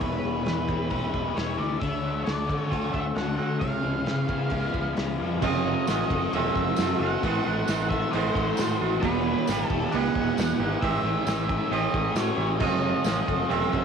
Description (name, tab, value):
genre	rock, shoegaze and dream pop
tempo	133 BPM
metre	4/4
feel	straight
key	unclear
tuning	A4 = 439 Hz
part	octave-fuzz lead guitar	melody	0.0-13.8 s	B4 to F#5	-32 LUFS	equal	distortion, cassette tape, analog delay
part	soft string machine	sustained chords	0.0-13.8 s	E4 to D#6	-37 LUFS	equal	phaser, ensemble chorus
part	picked twelve-string acoustic guitar	arpeggios	0.0-13.8 s	E4 to C#5	-36 LUFS	left 10 dB	analog chorus, analog delay
part	crunchy overdriven guitar	riff	0.0-13.8 s	E2 to F#4	-30 LUFS	left 10 dB	lush chorus
part	twangy electric guitar	riff	0.0-13.8 s	E2 to G#4	-29 LUFS	right 12 dB	reverse reverb
part	fuzz fingered electric bass	bass	0.0-13.8 s	E1 to D3	-30 LUFS	right 1 dB	overdrive
part	loose indie drum kit	drums	0.0-13.8 s	crash cymbal, hi-hat, kick drum, snare drum	-33 LUFS	equal	cassette tape
part	tambourine	percussion	5.9-13.2 s	none	-42 LUFS	right 13 dB	none
room	light reverb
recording	home recording on cassette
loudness	-23 LUFS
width	side -6 dB against mid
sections	0.0-5.4 A section; 5.4-13.8 B section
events	none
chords	0.0 E6; 1.8 Dmaj7; 3.6 C#7; 5.4 F#m7; 7.2 Am6; 9.0 Emaj7; 10.8 Amaj7; 12.6 F#m7